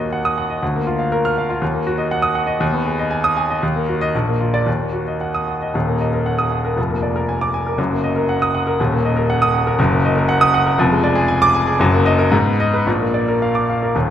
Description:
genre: classical, virtuoso piano study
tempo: 119 BPM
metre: 2/4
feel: rubato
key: Eb minor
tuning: A4 = 440 Hz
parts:
  - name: clear grand piano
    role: solo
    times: 0.0-14.1 s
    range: Eb1 to F6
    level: -15 LUFS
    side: equal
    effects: none
room: wet scoring stage reverb, RT60 1.6 s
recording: none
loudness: -15 LUFS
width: side -10 dB against mid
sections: 0.0-5.7 A section; 5.7-13.9 B section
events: none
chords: 0.0 Ebm; 0.6 Bb/D; 1.6 Ebm; 2.6 Abm/Eb; 3.6 Ebm; 4.1 Bb; 4.7 Ebm; 6.8 Bb7/F; 7.8 Ebm/Gb; 8.8 Ebm; 9.8 Ebm/Gb; 10.8 Ddim/F; 11.8 Ebm/Gb; 12.3 Abm; 12.9 Bb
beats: 0.11 | 0.61 1.11 | 1.61 2.11 | 2.61 3.12 | 3.62 4.13 | 4.67 5.21 | 5.75 6.26 | 6.77 7.28 | 7.78 8.29 | 8.79 9.29 | 9.78 10.28 | 10.78 11.29 | 11.80 12.32 | 12.86 13.41 | 13.95

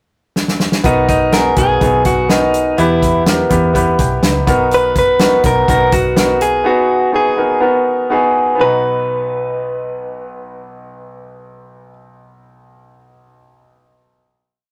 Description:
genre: piano-driven pop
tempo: 124 BPM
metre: 4/4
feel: straight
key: B major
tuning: A4 = 443 Hz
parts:
  - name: natural country drum kit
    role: drums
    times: 0.4-6.5 s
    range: hi-hat, kick drum, snare drum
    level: -19 LUFS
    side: equal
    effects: none
  - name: clear concert grand piano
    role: accompaniment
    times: 0.8-14.7 s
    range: B1 to A#5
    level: -17 LUFS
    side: equal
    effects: none
  - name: vintage muted fingered electric bass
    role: bass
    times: 0.8-6.6 s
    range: B1 to E2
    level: -22 LUFS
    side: equal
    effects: none
  - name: direct-recorded clean electric guitar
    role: melody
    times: 0.9-11.9 s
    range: D#4 to B4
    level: -18 LUFS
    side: equal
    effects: none
room: moderate studio reverb, RT60 0.6 s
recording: rough rehearsal-room recording, warm saturation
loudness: -14 LUFS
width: mono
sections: 0.0-0.8 pickup bar; 0.8-8.6 verse; 8.6-12.5 final chord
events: drum fill 0.4-0.8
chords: 0.0 N.C.; 0.8 Bmaj7; 2.8 Em; 4.5 Bmaj7; 6.7 G#m7; 8.6 Bmaj7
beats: 0.36 | 0.84 1.33 1.81 2.29 | 2.78 3.26 3.75 4.23 | 4.71 5.20 5.68 6.17 | 6.65 7.13 7.62 8.10 | 8.59 9.07 9.55 10.04 | 10.52 11.01 11.49 11.97

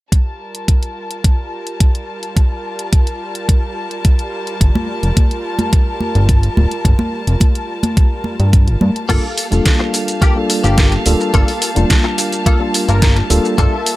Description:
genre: nu-disco, nu disco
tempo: 107 BPM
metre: 4/4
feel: straight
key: G minor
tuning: A4 = 439 Hz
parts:
  - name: dark chamber string section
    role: sustained chords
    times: 0.1-14.0 s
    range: G3 to A5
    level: -24 LUFS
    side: equal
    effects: sidechain pumping, low-pass filter
  - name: electronic kick drum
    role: drums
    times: 0.1-13.7 s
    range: none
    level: -12 LUFS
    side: equal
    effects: overdrive
  - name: pop drum kit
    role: drums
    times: 0.1-14.0 s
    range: crash cymbal, hi-hat, shaker, snare drum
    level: -20 LUFS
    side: equal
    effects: overdrive
  - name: fat analog bass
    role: bass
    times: 4.6-13.7 s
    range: D1 to G2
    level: -14 LUFS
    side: equal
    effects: tube saturation
  - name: congas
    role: percussion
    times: 4.8-8.9 s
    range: none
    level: -21 LUFS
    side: right 1 dB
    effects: none
  - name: tine electric piano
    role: accompaniment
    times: 9.1-13.7 s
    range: G3 to A5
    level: -18 LUFS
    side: equal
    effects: medium stereo tremolo, sidechain pumping, low-pass filter, digital delay
  - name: direct-recorded clean electric guitar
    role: riff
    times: 9.1-13.9 s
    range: Bb3 to Bb4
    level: -22 LUFS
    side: left 2 dB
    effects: ensemble chorus, digital delay
room: digital ambience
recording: none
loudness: -13 LUFS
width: side -17 dB against mid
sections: 0.1-9.1 A section; 9.1-14.0 B section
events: filter sweep on tine electric piano 9.1-14.0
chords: 0.1 Gm9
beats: | 0.12 0.68 1.25 1.81 | 2.37 2.93 3.49 4.05 | 4.61 5.17 5.73 6.29 | 6.85 7.41 7.97 8.54 | 9.10 9.66 10.22 10.78 | 11.34 11.90 12.46 13.02 | 13.58

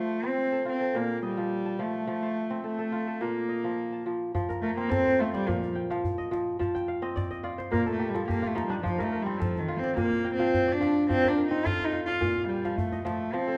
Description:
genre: west african traditional, West African string and xylophone music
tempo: 107 BPM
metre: 4/4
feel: straight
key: F mixolydian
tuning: A4 = 440 Hz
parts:
  - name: warm cello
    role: melody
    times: 0.0-13.6 s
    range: Eb3 to F4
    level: -30 LUFS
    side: equal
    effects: none
  - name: kora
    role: arpeggios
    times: 0.0-13.6 s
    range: Bb2 to A5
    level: -33 LUFS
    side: equal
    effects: none
  - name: djembe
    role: percussion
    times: 4.3-13.2 s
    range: none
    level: -37 LUFS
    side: equal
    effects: none
room: wet recital hall reverb, RT60 1.5 s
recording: none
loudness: -29 LUFS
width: mono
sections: 0.0-4.3 A section; 4.3-13.3 B section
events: cello solo 4.3-13.3; kora fill 6.6-8.8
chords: 0.0 F; 0.9 Bb5; 2.1 F; 3.2 Bb5; 4.3 F; 5.5 Bb; 6.6 F5; 7.7 Bb5; 8.8 F; 10.0 Bb; 11.1 F; 12.2 Bb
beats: 0.37 0.94 1.51 | 2.08 2.64 3.21 3.77 | 4.34 4.90 5.46 6.03 | 6.59 7.15 7.71 8.28 | 8.84 9.40 9.96 10.53 | 11.09 11.65 12.21 12.78 | 13.34

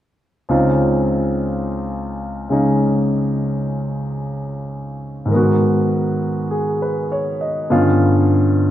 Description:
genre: jazz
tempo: 50 BPM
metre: 4/4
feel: swing 68% on 8ths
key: Db major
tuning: A4 = 439 Hz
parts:
  - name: warm grand piano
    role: accompaniment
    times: 0.5-8.7 s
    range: Db2 to Eb5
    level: -16 LUFS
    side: equal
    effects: none
room: wet concert hall reverb, RT60 1.8 s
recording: none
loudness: -16 LUFS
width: side -12 dB against mid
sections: 0.5-8.7 A section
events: none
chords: 0.5 Dbmaj7; 5.3 Abm7; 7.7 G7#11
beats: | 0.48 1.69 2.90 4.10 | 5.30 6.49 7.69

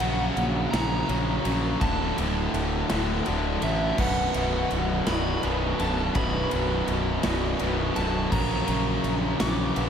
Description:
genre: post-rock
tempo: 55 BPM (dotted quarters)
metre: 6/8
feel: straight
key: B minor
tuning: A4 = 440 Hz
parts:
  - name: overdriven semi-hollow guitar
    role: melody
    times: 0.0-9.9 s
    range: E5 to D6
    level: -32 LUFS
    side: right 1 dB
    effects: slapback echo, tape echo
  - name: ethereal airy pad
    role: sustained chords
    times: 2.0-9.9 s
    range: A#2 to F#4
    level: -39 LUFS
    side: left 3 dB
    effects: none
  - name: clean electric guitar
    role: arpeggios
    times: 0.0-9.9 s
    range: B1 to F#4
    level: -35 LUFS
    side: left 1 dB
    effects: none
  - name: distorted electric guitar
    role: riff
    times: 0.0-9.9 s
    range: B1 to F#3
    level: -30 LUFS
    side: left 10 dB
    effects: overdrive
  - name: distorted electric guitar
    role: riff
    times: 0.0-9.9 s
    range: B1 to F#3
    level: -30 LUFS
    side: right 8 dB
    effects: overdrive
  - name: fuzz fingered electric bass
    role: bass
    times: 0.0-9.9 s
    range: B0 to A#1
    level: -29 LUFS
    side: equal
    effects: overdrive
  - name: big rock drum kit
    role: drums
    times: 0.0-9.9 s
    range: crash cymbal, kick drum, ride cymbal, snare drum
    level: -31 LUFS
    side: equal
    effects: none
  - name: vibraphone with medium mallets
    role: arpeggios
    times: 4.0-9.9 s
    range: C#4 to D5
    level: -35 LUFS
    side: right 4 dB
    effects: slapback echo, tape echo
room: moderate lush hall reverb, RT60 2.5 s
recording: big arena sound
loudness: -23 LUFS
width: side -8 dB against mid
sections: 0.0-9.9 A section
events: none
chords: 0.0 F#/A#; 1.8 D; 4.0 Bm; 8.3 F#/A#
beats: 0.72 | 1.81 2.90 | 3.98 5.07 | 6.15 7.24 | 8.32 9.40

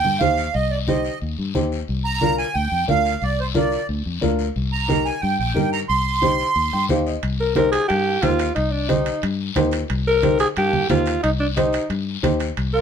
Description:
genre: latin, cumbia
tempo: 180 BPM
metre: 4/4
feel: straight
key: C minor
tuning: A4 = 438 Hz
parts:
  - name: accordion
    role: second line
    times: 0.0-6.9, 12.7-12.8 s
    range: F4 to C6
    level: -21 LUFS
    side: right 5 dB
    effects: light tremolo tuning
  - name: fingered electric bass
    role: bass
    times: 0.0-12.8 s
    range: Bb1 to G2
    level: -24 LUFS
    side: left 2 dB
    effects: none
  - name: congas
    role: percussion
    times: 0.0-12.4 s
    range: none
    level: -26 LUFS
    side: right 5 dB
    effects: none
  - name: dark upright piano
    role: accompaniment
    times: 0.2-12.5 s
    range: D4 to G5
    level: -23 LUFS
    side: left 2 dB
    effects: none
  - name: guiro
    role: percussion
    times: 0.2-12.8 s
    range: none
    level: -34 LUFS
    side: left 8 dB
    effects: none
  - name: timbales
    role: percussion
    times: 7.2-12.7 s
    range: none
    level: -31 LUFS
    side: right 4 dB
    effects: none
  - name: raspy alto saxophone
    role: melody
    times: 7.4-12.8 s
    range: D4 to Bb4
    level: -20 LUFS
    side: equal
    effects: none
room: light reverb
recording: minimal, uncompressed stereo recording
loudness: -18 LUFS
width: side -7 dB against mid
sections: 0.0-7.2 A section; 7.2-12.8 B section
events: accordion solo 0.0-7.2; upright piano fill 6.6-7.2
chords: 0.0 Cm; 1.9 Bb/C; 4.6 Eb/C; 5.9 Cm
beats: 0.21 | 0.54 0.88 1.21 1.55 | 1.88 2.21 2.55 2.88 | 3.22 3.55 3.89 4.22 | 4.55 4.89 5.22 5.56 | 5.89 6.23 6.56 6.89 | 7.23 7.56 7.90 8.23 | 8.56 8.90 9.23 9.56 | 9.90 10.23 10.57 10.90 | 11.23 11.57 11.90 12.24 | 12.57

